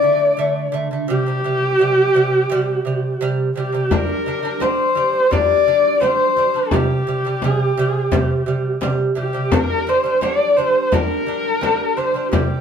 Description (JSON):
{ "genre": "mongolian traditional, Mongolian folk", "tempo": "86 BPM", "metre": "4/4", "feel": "straight", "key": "G yu mode", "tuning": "A4 = 438 Hz", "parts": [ { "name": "dark horsehead fiddle", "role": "melody", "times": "0.0-12.6 s", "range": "G4 to D5", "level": "-17 LUFS", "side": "left 1 dB", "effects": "none" }, { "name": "lute", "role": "arpeggios", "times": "0.0-12.6 s", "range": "C3 to D4", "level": "-21 LUFS", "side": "right 3 dB", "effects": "none" }, { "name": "frame drum", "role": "percussion", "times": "3.9-12.5 s", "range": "none", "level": "-21 LUFS", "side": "left 3 dB", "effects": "none" } ], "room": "wet studio reverb, RT60 0.7 s", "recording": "band playing live in one room", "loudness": "-16 LUFS", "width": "side -7 dB against mid", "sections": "0.0-3.9 A section; 3.9-12.6 B section", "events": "none", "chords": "0.0 D5; 1.1 C5; 3.9 G5; 6.7 C5; 9.5 G5" }